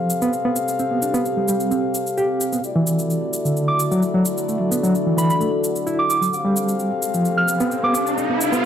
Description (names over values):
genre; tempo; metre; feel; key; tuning
breakbeat, breaks; 130 BPM; 4/4; straight; unclear; A4 = 440 Hz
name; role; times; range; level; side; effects
deep dark ambient pad; sustained chords; 0.0-8.7 s; C4 to G5; -27 LUFS; equal; chorus, built-in reverb, vintage 12-bit sampler grit
reed electric piano; riff; 0.0-8.6 s; D3 to G4; -21 LUFS; right 1 dB; fast tremolo
dark brass ensemble; stabs; 0.0-8.7 s; A3 to F5; -24 LUFS; left 3 dB; ping-pong delay
shaker; drums; 0.1-8.6 s; none; -29 LUFS; left 1 dB; overdrive
soft synth bell; melody; 3.7-8.0 s; B5 to F6; -23 LUFS; right 3 dB; chorus, telephone sound, ping-pong delay
riser; sound effects; 7.0-8.7 s; none; -26 LUFS; right 1 dB; none
room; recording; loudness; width
light reverb, digital ambience; none; -18 LUFS; side -9 dB against mid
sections
0.0-8.7 A section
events
riser 7.0-8.7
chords
0.0 G9sus4; 2.6 E9sus4; 6.3 G9sus4